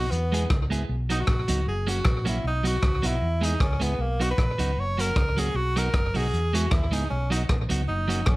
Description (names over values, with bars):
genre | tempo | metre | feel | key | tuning
ska | 154 BPM | 4/4 | swing 54% on 8ths | unclear | A4 = 442 Hz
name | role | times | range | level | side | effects
clear tenor saxophone | melody | 0.0-8.4 s | A#3 to C#5 | -29 LUFS | equal | plate reverb
clean electric guitar | accompaniment | 0.0-8.2 s | F#3 to G#4 | -30 LUFS | right 3 dB | slapback echo
hollow-body short-scale fingered electric bass | bass | 0.0-8.4 s | F#1 to E2 | -27 LUFS | equal | none
vintage drum kit | drums | 0.1-8.4 s | hi-hat, kick drum, rim click | -26 LUFS | equal | slapback echo
room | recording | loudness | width
light reverb | none | -22 LUFS | side -20 dB against mid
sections
0.0-8.4 A section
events
none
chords
0.1 E; 0.9 B; 1.7 F#; 2.4 B; 3.2 E; 4.0 B; 4.8 F#; 5.6 B; 6.3 E; 7.1 B